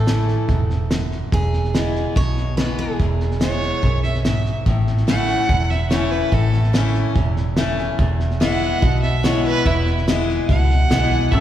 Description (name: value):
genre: honky-tonk and classic country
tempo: 144 BPM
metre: 4/4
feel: straight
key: A major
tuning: A4 = 440 Hz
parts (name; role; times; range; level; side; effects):
- picked steel-string acoustic guitar; melody; 0.0-4.2 s; G#4 to C#5; -28 LUFS; right 3 dB; none
- picked steel-string acoustic guitar; accompaniment; 0.0-11.4 s; E2 to E4; -22 LUFS; left 3 dB; none
- vintage muted fingered electric bass; bass; 0.0-11.4 s; E1 to C#2; -21 LUFS; right 1 dB; none
- cloth-damped thuddy drum kit; drums; 0.1-11.4 s; hi-hat, kick drum, snare drum; -22 LUFS; equal; none
- clear fiddle; second line; 3.4-11.4 s; E4 to F#5; -24 LUFS; right 3 dB; none
- pedal steel guitar; sustained chords; 11.3-11.4 s; C#4 to E5; -21 LUFS; left 1 dB; none
room: wet church reverb, RT60 2.5 s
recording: recorded in a church or concert hall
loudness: -16 LUFS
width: side -11 dB against mid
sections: 0.0-4.7 A section; 4.7-11.4 B section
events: fiddle solo 4.7-11.4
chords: 0.0 A; 1.3 E; 4.7 A; 8.0 E